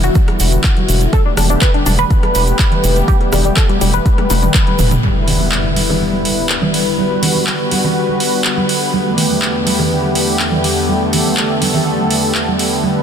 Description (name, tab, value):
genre	progressive house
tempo	123 BPM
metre	4/4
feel	straight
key	unclear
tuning	A4 = 440 Hz
part	lush unison pad	sustained chords	0.0-13.0 s	E2 to B4	-17 LUFS	left 1 dB	chorus, sidechain pumping
part	tight sequenced synth	arpeggios	0.0-4.9 s	G3 to B4	-19 LUFS	left 2 dB	chorus, phaser, sidechain pumping, tape echo
part	round analog bass	bass	0.0-5.0 s	E1	-14 LUFS	equal	sidechain pumping
part	deep house drum kit	drums	0.0-12.7 s	handclaps, hi-hat, rim click, toms	-18 LUFS	equal	overdrive, sidechain pumping on hats, sidechain pumping on toms
part	congas and bongos	percussion	0.0-12.9 s	none	-21 LUFS	right 4 dB	sidechain pumping on perc
part	egg shaker	percussion	0.0-5.0 s	none	-27 LUFS	right 7 dB	none
part	electronic kick drum	drums	0.2-4.6 s	none	-13 LUFS	equal	overdrive
part	impact	sound effects	5.0-7.0 s	none	-20 LUFS	equal	none
room	light reverb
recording	dense, heavily limited modern master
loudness	-12 LUFS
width	side -8 dB against mid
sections	0.0-5.0 A section; 5.0-13.0 B section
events	filter sweep on analog synth pad 0.0-5.0; drum fill 4.1-5.0; impact 5.0-7.0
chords	0.0 Em7; 1.1 Gadd9/E; 5.0 Em7; 8.9 Gadd9/E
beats	0.15 0.64 | 1.13 1.62 2.11 2.59 | 3.08 3.57 4.06 4.54 | 5.03 5.52 6.01 6.50 | 6.98 7.47 7.96 8.45 | 8.94 9.42 9.91 10.40 | 10.89 11.37 11.86 12.35 | 12.84